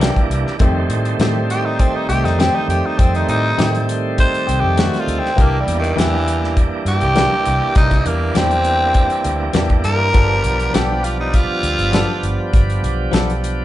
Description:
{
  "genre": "straight-eighth soul blues",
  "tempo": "101 BPM",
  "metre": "4/4",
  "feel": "straight",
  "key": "C mixolydian",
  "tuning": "A4 = 440 Hz",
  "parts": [
    { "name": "bright tonewheel organ", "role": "accompaniment", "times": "0.0-13.6 s", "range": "Eb3 to D4", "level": "-22 LUFS", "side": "right 3 dB", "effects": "slow rotary speaker, overdrive" },
    { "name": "direct-recorded clean electric guitar", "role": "stabs", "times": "0.0-13.3 s", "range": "Eb3 to A4", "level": "-24 LUFS", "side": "left 5 dB", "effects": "none" },
    { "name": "vintage muted fingered electric bass", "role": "bass", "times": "0.0-13.6 s", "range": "G1 to A2", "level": "-20 LUFS", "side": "equal", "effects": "none" },
    { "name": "damped 70s drum kit", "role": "drums", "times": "0.0-13.6 s", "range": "hi-hat, kick drum, snare drum", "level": "-17 LUFS", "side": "equal", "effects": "none" },
    { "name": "growling tenor saxophone", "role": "melody", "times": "1.5-12.5 s", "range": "Eb3 to C5", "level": "-19 LUFS", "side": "equal", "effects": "none" }
  ],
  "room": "moderate large studio reverb, RT60 0.9 s",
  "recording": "band playing live in one room, nothing above 10.5 kHz",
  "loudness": "-14 LUFS",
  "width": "side -14 dB against mid",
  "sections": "0.0-13.6 A section",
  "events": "tenor saxophone solo 0.0-13.6",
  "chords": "0.0 C9; 0.6 F9; 5.4 C9; 10.1 G9"
}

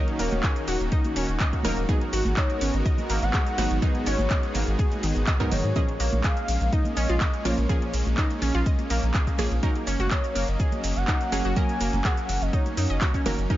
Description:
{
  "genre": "progressive house",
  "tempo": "124 BPM",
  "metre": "4/4",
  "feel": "straight",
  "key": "unclear",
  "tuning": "A4 = 440 Hz",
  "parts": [
    { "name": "warm velvety synth lead", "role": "melody", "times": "0.0-13.2 s", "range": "Db5 to Ab5", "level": "-33 LUFS", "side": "left 1 dB", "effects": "chorus, sidechain pumping, dub echo" },
    { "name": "supersaw pad", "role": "sustained chords", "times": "0.0-13.6 s", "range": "Eb3 to Bb4", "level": "-32 LUFS", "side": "equal", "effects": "sidechain pumping" },
    { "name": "wide unison pluck", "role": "stabs", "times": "0.0-13.6 s", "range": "Ab2 to Bb4", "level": "-32 LUFS", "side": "right 2 dB", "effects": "sidechain pumping, dub echo" },
    { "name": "deep house drum kit", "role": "drums", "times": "0.1-13.6 s", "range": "handclaps, hi-hat, ride cymbal, shaker", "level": "-32 LUFS", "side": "right 1 dB", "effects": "overdrive" },
    { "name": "glassy wavetable pluck", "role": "arpeggios", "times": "0.2-13.6 s", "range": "Eb3 to Eb6", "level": "-32 LUFS", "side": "equal", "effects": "chorus, cassette tape, sidechain pumping, dub echo" },
    { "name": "saturated sub bass", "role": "bass", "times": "0.2-13.5 s", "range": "Eb1 to Ab2", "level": "-26 LUFS", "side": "equal", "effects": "sidechain pumping" },
    { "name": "congas", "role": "percussion", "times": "0.3-13.4 s", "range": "none", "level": "-36 LUFS", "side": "right 2 dB", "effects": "sidechain pumping on perc" },
    { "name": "electronic kick drum", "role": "drums", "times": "0.4-13.6 s", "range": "none", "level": "-24 LUFS", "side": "equal", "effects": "none" },
    { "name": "drifting glass-harmonics texture", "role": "texture", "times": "13.5-13.6 s", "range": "none", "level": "barely audible", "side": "none", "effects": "none" }
  ],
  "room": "little or no reverb",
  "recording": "nothing above 7.4 kHz",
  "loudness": "-22 LUFS",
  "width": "side -14 dB against mid",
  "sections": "0.0-13.6 A section",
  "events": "none",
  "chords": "0.0 Ebm7; 1.9 Abm7; 5.8 Bbm7; 9.6 Gb"
}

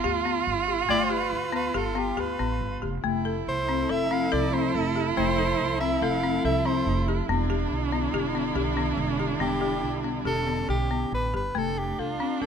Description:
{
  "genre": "contemporary instrumental, chamber music in an uneven meter",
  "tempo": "141 BPM",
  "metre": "5/4",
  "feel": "straight",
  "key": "unclear",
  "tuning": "A4 = 445 Hz",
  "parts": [
    { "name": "rich cello", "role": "second line", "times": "0.0-12.5 s", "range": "D4 to F4", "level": "-30 LUFS", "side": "right 8 dB", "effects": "none" },
    { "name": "folk marimba with medium hard mallets", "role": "arpeggios", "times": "0.0-12.5 s", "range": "A3 to A4", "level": "-29 LUFS", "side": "left 8 dB", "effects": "none" },
    { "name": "upright bass", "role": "bass", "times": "0.0-12.5 s", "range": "E1 to D2", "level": "-31 LUFS", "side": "right 2 dB", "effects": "none" },
    { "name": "clear soprano saxophone", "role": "melody", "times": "0.9-12.5 s", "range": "F4 to F5", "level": "-29 LUFS", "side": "equal", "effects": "none" },
    { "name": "dark studio string section", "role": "sustained chords", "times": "3.0-11.5 s", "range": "D3 to A4", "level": "-34 LUFS", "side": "left 1 dB", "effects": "none" }
  ],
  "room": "moderate recital hall reverb, RT60 1.4 s",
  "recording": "none",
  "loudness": "-24 LUFS",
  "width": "side -7 dB against mid",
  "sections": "0.0-11.6 A section",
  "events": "none",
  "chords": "0.0 G; 3.0 Fmaj7; 7.3 Em7; 11.6 F6"
}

